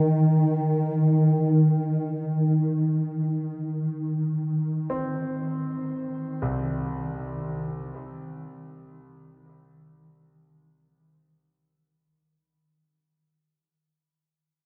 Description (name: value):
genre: dark ambient drone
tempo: free time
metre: none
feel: none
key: unclear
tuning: A4 = 440 Hz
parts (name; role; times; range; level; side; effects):
- swarming drone; drone; 0.0-12.1 s; Eb3; -26 LUFS; equal; built-in reverb
- warm concert grand piano; arpeggios; 4.9-12.5 s; C2 to C4; -34 LUFS; equal; diffuse ambient delay
room: wet cathedral reverb, RT60 5.9 s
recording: in a vast, echoing space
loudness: -25 LUFS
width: mono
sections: 0.0-12.0 A section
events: fade-out 1.2-12.0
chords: 0.0 Cm